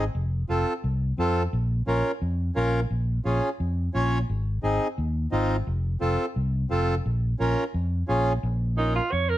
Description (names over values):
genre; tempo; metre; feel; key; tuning
latin, cumbia; 174 BPM; 4/4; straight; Bb minor; A4 = 440 Hz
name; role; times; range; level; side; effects
accordion; accompaniment; 0.0-9.0 s; C4 to Db5; -26 LUFS; equal; none
fingered electric bass; bass; 0.0-9.4 s; F1 to F2; -25 LUFS; equal; none
clear alto saxophone; melody; 8.8-9.4 s; Eb4 to Db5; -24 LUFS; right 4 dB; none
room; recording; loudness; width
light reverb; none; -23 LUFS; side -14 dB against mid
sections
0.0-8.4 A section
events
none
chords
0.1 F; 1.5 Bbm; 4.3 Ab; 5.7 F; 7.1 Bbm